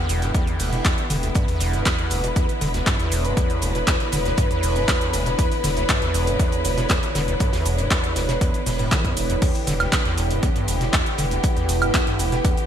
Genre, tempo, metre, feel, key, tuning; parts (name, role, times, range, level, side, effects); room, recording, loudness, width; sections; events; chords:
acid house; 119 BPM; 4/4; straight; E dorian; A4 = 440 Hz
clear symphonic string section; sustained chords; 0.0-12.7 s; D3 to B4; -28 LUFS; equal; sidechain pumping
acid bass, square; riff; 0.0-12.6 s; D2 to E3; -26 LUFS; equal; overdrive, sidechain pumping, ping-pong delay
warbly tape-like pad; texture; 0.0-12.7 s; E4 to F#5; -28 LUFS; equal; chorus, built-in reverb, sidechain pumping
saturated sub bass; bass; 0.1-12.4 s; E1; -27 LUFS; equal; sidechain pumping
punchy analog drum machine; drums; 0.1-12.7 s; crash cymbal, handclaps, hi-hat, shaker, woodblock; -26 LUFS; right 1 dB; overdrive, gated reverb
warm soul drum kit; drums; 0.1-12.6 s; hi-hat, snare drum; -36 LUFS; right 3 dB
electronic kick drum; drums; 0.3-12.5 s; -22 LUFS; equal; overdrive
light reverb, studio reverb; bright 1980s-style digital production; -19 LUFS; side -9 dB against mid
0.0-12.7 A section
0.0 Em7